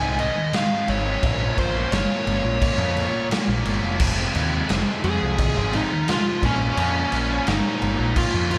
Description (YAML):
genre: quiet-loud alternative rock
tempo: 87 BPM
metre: 4/4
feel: straight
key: F minor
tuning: A4 = 440 Hz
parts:
  - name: dark smooth lead guitar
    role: melody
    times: 0.0-8.6 s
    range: Db4 to Ab5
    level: -28 LUFS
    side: equal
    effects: overdrive, slapback echo
  - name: warm chamber string section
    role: sustained chords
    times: 0.0-4.0 s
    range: C3 to F5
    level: -42 LUFS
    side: equal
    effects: none
  - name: fuzz guitar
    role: riff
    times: 0.0-8.6 s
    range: F2 to Eb4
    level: -33 LUFS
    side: equal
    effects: distortion, slapback echo
  - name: thick fuzz guitar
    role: riff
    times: 0.0-8.6 s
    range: F2 to Eb4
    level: -31 LUFS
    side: equal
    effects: distortion, slapback echo
  - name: growling picked electric bass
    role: bass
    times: 0.0-8.6 s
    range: F1 to F2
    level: -28 LUFS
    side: equal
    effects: overdrive
  - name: raw garage drum kit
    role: drums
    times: 0.2-8.6 s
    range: crash cymbal, kick drum, snare drum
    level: -26 LUFS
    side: equal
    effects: none
room: light reverb, small room ambience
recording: none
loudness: -22 LUFS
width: mono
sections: 0.0-4.0 A section; 4.0-8.6 A section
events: none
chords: 0.0 Ab; 1.2 Bbm; 4.0 Fm; 6.4 Bbm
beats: 0.54 | 1.23 1.92 2.62 3.31 | 4.00 4.70 5.39 6.08 | 6.77 7.47 8.16